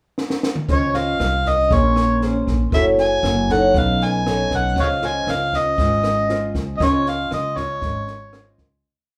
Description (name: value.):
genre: bossa nova.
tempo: 118 BPM.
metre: 4/4.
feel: straight.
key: Db major.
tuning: A4 = 439 Hz.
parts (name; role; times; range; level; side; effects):
compact cocktail drum kit; drums; 0.2-8.6 s; kick drum, rim click, snare drum, toms; -27 LUFS; equal; none.
overdriven harmonica; melody; 0.7-8.6 s; Db5 to Ab5; -23 LUFS; equal; none.
nylon-string guitar; accompaniment; 0.7-8.8 s; Gb3 to Eb5; -25 LUFS; equal; none.
vibraphone with medium hard mallets; accompaniment; 0.7-8.9 s; Db4 to C6; -32 LUFS; equal; none.
upright bass; bass; 0.7-8.8 s; Gb1 to Db2; -25 LUFS; equal; none.
room: moderate large studio reverb, RT60 0.8 s.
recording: band playing live in one room.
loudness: -19 LUFS.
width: mono.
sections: 0.0-0.7 pickup bar; 0.7-8.8 A section.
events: drum fill 0.2-0.7; fade-out 6.8-8.8.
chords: 0.0 N.C.; 0.7 Dbmaj9; 1.7 Bbm9; 2.7 Gbm7; 3.7 Cb9; 4.8 Dbmaj9.